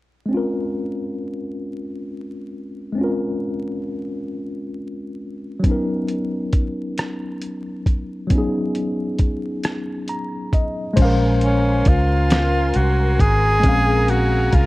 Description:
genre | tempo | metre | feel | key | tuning
slow six-eight R&B | 45 BPM (dotted quarters) | 6/8 | straight | Bb minor | A4 = 444 Hz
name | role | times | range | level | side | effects
tine electric piano | accompaniment | 0.3-14.7 s | F#3 to A#5 | -23 LUFS | left 1 dB | overdrive, fast stereo tremolo
dusty soul sampler-style drum kit | drums | 5.6-14.7 s | crash cymbal, hi-hat, kick drum, rim click, snare drum | -18 LUFS | equal | none
lush unison pad | sustained chords | 11.0-14.7 s | Bb4 to C6 | -30 LUFS | left 2 dB | chorus, phaser
vintage muted fingered electric bass | bass | 11.0-14.7 s | Ab1 to Db2 | -18 LUFS | equal | none
breathy tenor saxophone | melody | 11.4-14.7 s | Db4 to Ab4 | -20 LUFS | equal | none
room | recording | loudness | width
light reverb | dark, warm production, vinyl crackle | -18 LUFS | side -19 dB against mid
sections
0.3-11.0 A section; 11.0-14.7 B section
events
tine electric piano fill 9.6-11.0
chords
0.3 Bbm9; 5.6 Bmaj9; 11.0 Bbm9

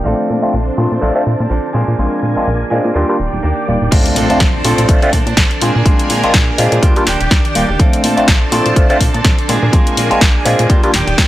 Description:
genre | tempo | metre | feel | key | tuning
filtered disco house | 124 BPM | 4/4 | swing 56% on 16ths | Bb major | A4 = 440 Hz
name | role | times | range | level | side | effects
overdriven tine electric piano | accompaniment | 0.0-10.9 s | G3 to F4 | -16 LUFS | left 1 dB | phaser, sidechain pumping, low-pass filter
string machine, full ensemble | sustained chords | 0.0-11.3 s | Eb3 to A5 | -21 LUFS | equal | ensemble chorus, sidechain pumping, low-pass filter
direct-recorded clean electric guitar | riff | 0.0-11.3 s | F3 to A4 | -21 LUFS | right 4 dB | vintage 12-bit sampler grit, sidechain pumping, low-pass filter
plucky analog bass | bass | 0.1-11.3 s | Eb1 to Bb2 | -18 LUFS | equal | sidechain pumping, low-pass filter
electronic kick drum | drums | 3.9-11.3 s | none | -12 LUFS | equal | none
house drum kit | drums | 3.9-11.3 s | crash cymbal, hi-hat, snare drum | -17 LUFS | left 1 dB | sidechain pumping on hats, low-pass filter on hats, sidechain pumping on cymbals, low-pass filter on cymbals, low-pass filter on snare
impact | sound effects | 3.9-5.9 s | none | -24 LUFS | equal | none
room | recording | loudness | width
light reverb, digital ambience | none | -10 LUFS | side -15 dB against mid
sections
0.0-3.9 A section; 3.9-11.3 B section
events
filter sweep 0.0-3.9; drop 3.9-11.3; impact 3.9-5.9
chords
0.1 Bbmaj9; 1.7 Bb7; 3.0 Ebmaj7; 3.9 Bbmaj9; 5.6 Bb7; 6.8 Ebmaj7; 7.8 Bbmaj9; 9.5 Bb7; 10.7 Ebmaj7

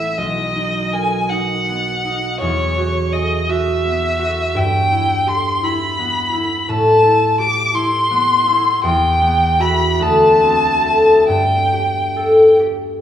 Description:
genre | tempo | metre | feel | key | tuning
classical, impressionist duo for violin and harp | 44-57 BPM (dotted quarters) | 6/8 | rubato | G major from 4.5 s | A4 = 440 Hz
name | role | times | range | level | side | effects
rich violin | melody | 0.0-12.6 s | C#5 to D6 | -16 LUFS | left 1 dB | none
concert harp | accompaniment | 0.0-13.0 s | A1 to E5 | -16 LUFS | equal | none
room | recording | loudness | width
moderate scoring stage reverb, RT60 1.6 s | small room reverb | -13 LUFS | side -10 dB against mid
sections
0.0-13.0 A section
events
none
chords
0.2 Bmaj7; 2.4 Eadd9; 4.5 G6; 6.7 Am9; 8.8 Emadd9; 10.0 D9sus4; 11.3 Gsus2

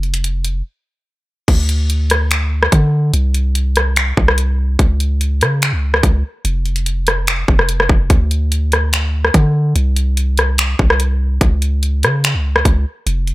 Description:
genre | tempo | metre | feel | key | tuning
hip hop, atmospheric cloud-rap | 145 BPM | 4/4 | half-time | unclear | A4 = 444 Hz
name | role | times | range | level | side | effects
long sustained 808-style bass | bass | 0.0-13.3 s | F1 to D3 | -15 LUFS | equal | none
trap drum kit | drums | 0.0-13.3 s | crash cymbal, finger snaps, hi-hat, kick drum, rim click | -15 LUFS | equal | none
room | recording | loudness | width
little or no reverb | none | -13 LUFS | side -19 dB against mid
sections
0.0-1.5 A section; 1.5-13.3 B section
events
break 0.7-1.5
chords
none

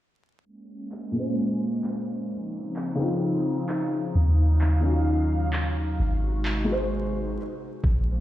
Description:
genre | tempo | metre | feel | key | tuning
future garage | 130 BPM | 4/4 | swing 65% on 16ths | Bb minor | A4 = 440 Hz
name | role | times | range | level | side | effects
airy breathy pad | sustained chords | 0.5-8.2 s | C3 to F5 | -30 LUFS | right 1 dB | chorus, sidechain pumping
electronic handclaps | drums | 0.9-6.6 s | none | -36 LUFS | right 1 dB | overdrive, vintage 12-bit sampler grit
felt-muted upright piano | accompaniment | 1.1-7.4 s | Bb2 to C5 | -29 LUFS | left 2 dB | sidechain pumping, low-pass filter, analog delay
soft 808-style bass | bass | 4.2-8.2 s | Ab1 to Eb2 | -23 LUFS | equal | sidechain pumping
electronic kick drum | drums | 7.8-8.0 s | none | -23 LUFS | equal | vintage 12-bit sampler grit
room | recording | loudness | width
light reverb, digital ambience | played on a big sound system in a bare room, stone room reverb, vinyl crackle, low-pass filter | -23 LUFS | side -14 dB against mid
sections
0.5-7.8 A section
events
filter sweep on felt piano 0.5-7.8; filter sweep 0.5-7.8; stop 7.4-7.8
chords
0.5 Bbm9; 2.3 Dbmaj9; 4.1 Ebm9; 6.0 Ab7

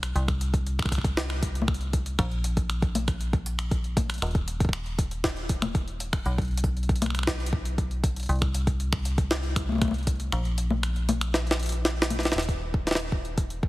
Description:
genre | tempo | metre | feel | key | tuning
IDM | 118 BPM | 4/4 | straight | unclear | A4 = 444 Hz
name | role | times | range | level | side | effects
metallic FM bass | bass | 0.0-13.7 s | Eb1 to C2 | -28 LUFS | equal | none
jungle sampler-style drum kit | drums | 0.0-13.6 s | congas, finger snaps, hi-hat, snare drum | -29 LUFS | left 1 dB | small room ambience
electronic kick drum | drums | 0.3-13.7 s | none | -27 LUFS | equal | small room ambience
room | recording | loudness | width
little or no reverb | heavily compressed radio sound | -24 LUFS | side -18 dB against mid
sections
0.0-12.4 A section; 12.4-13.7 B section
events
kick drops out 10.3-12.4; drum fill 11.3-12.4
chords
none

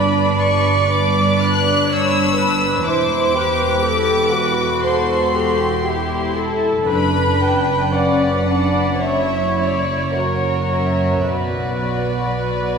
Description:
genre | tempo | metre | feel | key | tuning
classical, slow romantic movement for string orchestra | 50-63 BPM | 4/4 | rubato | B minor | A4 = 436 Hz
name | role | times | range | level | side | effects
warm chamber violin section | melody | 0.0-12.8 s | C#5 to F#6 | -23 LUFS | left 4 dB | none
warm symphonic violin section | second line | 0.0-12.8 s | C#4 to C#5 | -21 LUFS | left 2 dB | none
dark studio viola section | accompaniment | 0.0-12.8 s | G4 to D5 | -20 LUFS | right 1 dB | none
dark chamber double bass section | bass | 0.0-12.8 s | E1 to B1 | -24 LUFS | right 3 dB | none
warm chamber cello section | bass | 0.0-12.8 s | E2 to B2 | -24 LUFS | right 3 dB | none
room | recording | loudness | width
wet church reverb, RT60 3.0 s | recorded in a church or concert hall | -15 LUFS | side -6 dB against mid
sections
0.0-12.8 A section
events
none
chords
0.0 G; 2.9 C/E; 6.9 Bm/F#; 9.0 F#7; 11.3 Bm

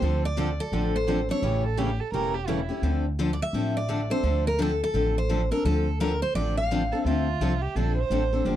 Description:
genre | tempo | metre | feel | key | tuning
acoustic string swing (jazz manouche) | 171 BPM | 4/4 | swing 62% on 8ths | D minor | A4 = 440 Hz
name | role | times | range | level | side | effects
picked steel-string acoustic guitar | melody | 0.0-7.2 s | A4 to F5 | -28 LUFS | right 1 dB | none
picked steel-string acoustic guitar | accompaniment | 0.0-8.6 s | C#3 to A4 | -28 LUFS | left 3 dB | none
picked steel-string acoustic guitar | accompaniment | 0.0-2.6 s | D3 to A4 | -34 LUFS | right 9 dB | none
upright bass | bass | 0.0-8.6 s | E1 to D2 | -27 LUFS | equal | none
warm violin | second line | 1.6-2.8, 6.9-8.6 s | E4 to C5 | -31 LUFS | right 7 dB | none
room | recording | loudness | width
light reverb | dry, close 1970s-style studio recording | -23 LUFS | side -12 dB against mid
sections
0.0-2.8 A section; 2.8-8.6 A section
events
none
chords
0.0 Dm7; 1.4 A7; 2.8 Dm7

